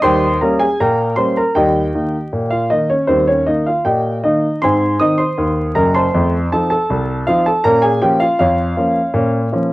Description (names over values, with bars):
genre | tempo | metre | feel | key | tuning
ragtime piano | 79 BPM | 2/4 | straight | unclear | A4 = 435 Hz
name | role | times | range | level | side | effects
clear grand piano | solo | 0.0-9.7 s | Gb1 to Eb6 | -13 LUFS | equal | cassette tape
room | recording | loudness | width
light reverb | home recording on cassette, vinyl crackle | -13 LUFS | side -18 dB against mid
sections
0.0-9.7 A section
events
none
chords
0.0 Eb7; 1.6 Eb; 4.6 Ab; 6.1 F7; 7.6 Bbm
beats
| 0.04 0.79 | 1.55 2.32 | 3.08 3.85 | 4.61 5.37 | 6.13 6.89 | 7.65 8.40 | 9.16